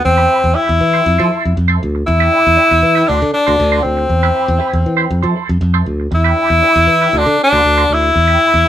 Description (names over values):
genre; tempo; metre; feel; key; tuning
disco; 118 BPM; 4/4; straight; unclear; A4 = 440 Hz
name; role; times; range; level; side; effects
breathy tenor saxophone; melody; 0.0-8.7 s; C4 to E4; -12 LUFS; left 1 dB; none
clean electric guitar; accompaniment; 0.0-8.7 s; D4 to C5; -20 LUFS; right 8 dB; wah, tremolo
modern bright fingered electric bass; bass; 0.1-8.6 s; D2 to F3; -15 LUFS; equal; none
room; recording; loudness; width
light reverb; band playing live in one room; -10 LUFS; side -11 dB against mid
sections
0.0-8.7 A section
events
none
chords
0.0 Cmaj7/E; 1.1 Fmaj7; 2.1 Em7; 3.1 D7; 4.1 Cmaj7/E; 5.1 Fmaj7; 6.1 Em7; 7.1 D7; 8.1 Cmaj7/E (rootless)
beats
| 0.04 0.55 1.05 1.56 | 2.06 2.57 3.08 3.58 | 4.09 4.60 5.10 5.61 | 6.12 6.62 7.13 7.64 | 8.14 8.65